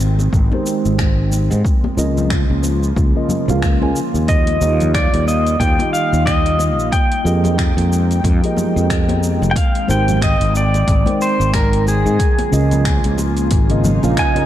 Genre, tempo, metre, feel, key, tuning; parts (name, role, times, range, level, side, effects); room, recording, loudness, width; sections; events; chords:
sunset chillout; 91 BPM; 4/4; swing 58% on 16ths; A4 = 440 Hz
airy breathy pad; sustained chords; 0.0-14.5 s; Db3 to G5; -23 LUFS; equal; chorus
sustaining fretless electric bass; bass; 0.0-14.1 s; F1 to Ab2; -16 LUFS; equal
smooth R&B drum kit; drums; 0.0-14.5 s; finger snaps, hi-hat, shaker; -28 LUFS; equal; small room ambience
congas; percussion; 0.2-14.5 s; -26 LUFS; left 3 dB
electronic kick drum; drums; 0.3-14.3 s; -17 LUFS; equal; overdrive, small room ambience
mellow tine electric piano; accompaniment; 0.5-14.5 s; Db3 to Ab5; -23 LUFS; moving between left 3 dB and right 4 dB; auto-pan, low-pass filter, ping-pong delay
pedal steel guitar; melody; 4.3-14.5 s; Ab4 to Ab5; -20 LUFS; equal; digital delay
swell; sound effects; 13.7-14.5 s; -25 LUFS; right 6 dB
light reverb; dark, warm production; -13 LUFS; side -12 dB against mid
0.0-14.5 A section
swell 13.7-14.5
0.0 Abmaj7; 1.6 Db6; 4.3 Ebadd9; 6.9 Fm11; 9.6 Abmaj7; 12.2 Db6